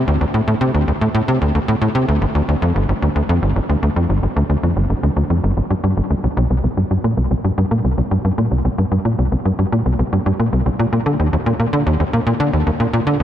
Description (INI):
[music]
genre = ambient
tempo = 112 BPM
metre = 4/4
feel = straight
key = C minor from 6.5 s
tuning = A4 = 440 Hz
[part]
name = tight sequencer bass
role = solo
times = 0.0-13.2 s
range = G1 to D3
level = -15 LUFS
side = equal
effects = analog chorus, tape echo
[sound]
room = moderate huge ambient reverb, RT60 6.9 s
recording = none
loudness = -15 LUFS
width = side -11 dB against mid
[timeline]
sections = 0.0-6.5 A section; 6.5-13.2 B section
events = none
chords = none